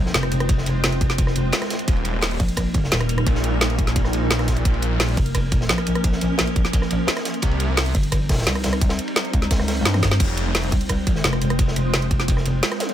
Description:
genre	dark technical drum and bass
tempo	173 BPM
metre	4/4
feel	straight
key	F minor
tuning	A4 = 439 Hz
part	swarming drone	sustained chords	0.0-12.9 s	F3 to C5	-27 LUFS	equal	built-in reverb, sidechain pumping
part	metallic wobble bass	bass	0.0-12.6 s	Eb1 to G2	-22 LUFS	equal	chorus
part	impact and zap	sound effects	0.0-0.5, 12.8-12.9 s	none	-34 LUFS	equal	none
part	crunchy breakbeat drum kit	drums	0.1-12.9 s	hi-hat, ride cymbal, snare drum	-31 LUFS	equal	high-pass filter on cymbals, high-pass filter on hats, high-pass filter on snare, high-pass filter on room
part	drum and bass drum kit	drums	0.1-12.9 s	crash cymbal, hi-hat, rim click, snare drum, toms	-23 LUFS	equal	none
part	electronic kick drum	drums	0.5-12.4 s	none	-21 LUFS	equal	none
part	wide detuned saw bass	bass	1.9-5.2, 7.4-7.9, 10.2-10.7 s	Eb1 to C2	-22 LUFS	equal	chorus, overdrive, sidechain pumping
room	little or no reverb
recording	none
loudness	-18 LUFS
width	side -11 dB against mid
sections	0.0-12.9 A section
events	impact 0.0-0.5; drum fill 9.9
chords	0.0 Fm; 1.9 Eb; 4.7 Bbm; 7.4 Cm; 10.2 Fm

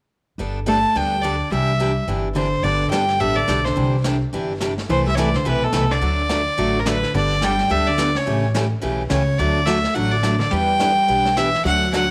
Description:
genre	country, western swing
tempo	213 BPM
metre	4/4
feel	swing 61% on 8ths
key	G major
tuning	A4 = 440 Hz
part	picked steel-string acoustic guitar	accompaniment	0.4-12.0 s	C3 to B4	-27 LUFS	equal	none
part	upright bass	bass	0.4-12.1 s	G1 to E2	-26 LUFS	equal	none
part	clear fiddle	melody	0.7-12.1 s	A4 to A5	-23 LUFS	equal	none
part	hollow-body jazz guitar	second line	0.7-12.1 s	B2 to A3	-27 LUFS	equal	none
part	vintage brush drum kit	drums	2.6-12.1 s	brushed snare drum, hi-hat, snare drum	-32 LUFS	equal	none
room	moderate plate reverb, RT60 2.0 s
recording	none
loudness	-20 LUFS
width	mono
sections	0.4-2.6 A section; 2.6-12.1 B section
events	none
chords	0.4 Gadd9; 1.5 Cadd9; 2.6 Gadd9; 3.8 Cadd9; 4.9 Amadd9/C; 6.0 D; 7.1 Gadd9; 8.3 A7; 9.4 D; 10.5 Em7

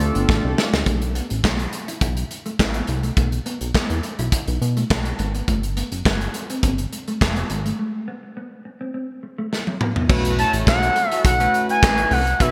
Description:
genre	early-eighties boogie funk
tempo	104 BPM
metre	4/4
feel	straight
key	unclear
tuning	A4 = 435 Hz
part	expressive portamento lead	melody	0.0-0.2, 10.4-12.5 s	E5 to A5	-22 LUFS	equal	chorus, delay
part	chorused polysynth	accompaniment	0.0-0.7, 10.1-12.5 s	A3 to C#5	-27 LUFS	equal	none
part	mellow electric guitar	riff	0.0-10.1 s	A3 to E4	-32 LUFS	equal	lush chorus
part	chorused synth bass	bass	0.0-12.5 s	F1 to B2	-26 LUFS	equal	none
part	modern studio drum kit	drums	0.0-12.5 s	crash cymbal, handclaps, hi-hat, kick drum, snare drum, toms	-24 LUFS	equal	gated reverb
room	moderate lush hall reverb, RT60 2.5 s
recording	bright 1980s-style digital production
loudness	-21 LUFS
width	mono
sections	0.9-10.1 A section; 10.1-12.5 B section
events	drum fill 0.3-0.9, 9.5-10.1; break 7.8-10.1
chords	0.0 G9sus4; 0.9 B7sus4; 5.5 Gsus4; 10.1 B9sus4

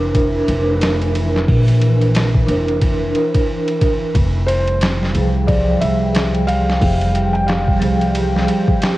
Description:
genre	trip hop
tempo	90 BPM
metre	4/4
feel	swing 59% on 16ths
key	unclear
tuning	A4 = 442 Hz
part	vibraphone with soft mallets	accompaniment	0.0-9.0 s	F3 to C5	-20 LUFS	equal	tremolo, cassette tape, tape echo
part	upright bass	bass	0.0-8.5 s	F1 to C2	-18 LUFS	equal	none
part	bowed-like drone	texture	0.0-9.0 s	E3	-28 LUFS	equal	built-in reverb, phaser, cassette tape
part	boom bap sampler-style drum kit	drums	0.1-9.0 s	hi-hat, kick drum, ride cymbal, snare drum	-20 LUFS	equal	cassette tape
part	dark analog pad	sustained chords	4.6-9.0 s	G3 to G5	-21 LUFS	right 2 dB	chorus, cassette tape
part	felt-muted upright piano	melody	4.5-9.0 s	C5 to G5	-22 LUFS	equal	cassette tape, tape echo
room	light reverb, studio reverb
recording	home recording on cassette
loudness	-14 LUFS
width	side -17 dB against mid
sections	0.0-9.0 A section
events	none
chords	0.0 Bbadd9; 4.1 Fm

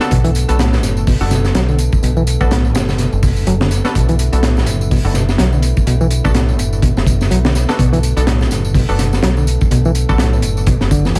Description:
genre	breakbeat, breaks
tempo	125 BPM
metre	4/4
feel	swing 57% on 16ths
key	B minor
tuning	A4 = 440 Hz
part	tonewheel organ	sustained chords	0.0-11.2 s	D3 to A4	-28 LUFS	equal	stopped rotary speaker, vintage 12-bit sampler grit, sidechain pumping
part	orchestra-hit-like synth stab	stabs	0.0-10.2 s	B3 to A4	-26 LUFS	equal	built-in reverb, delay
part	crunchy breakbeat drum kit	drums	0.0-11.2 s	hi-hat, kick drum, snare drum	-20 LUFS	equal	none
part	tambourine	drums	0.0-11.2 s	none	-33 LUFS	equal	overdrive
part	barky reed electric piano	riff	0.1-11.2 s	A2 to F#3	-21 LUFS	equal	overdrive, low-pass filter, delay
part	deep dub fingered electric bass	bass	0.1-11.2 s	F#1 to B1	-18 LUFS	equal	none
room	little or no reverb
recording	vinyl crackle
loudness	-14 LUFS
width	mono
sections	0.0-11.2 A section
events	none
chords	0.0 Bm7

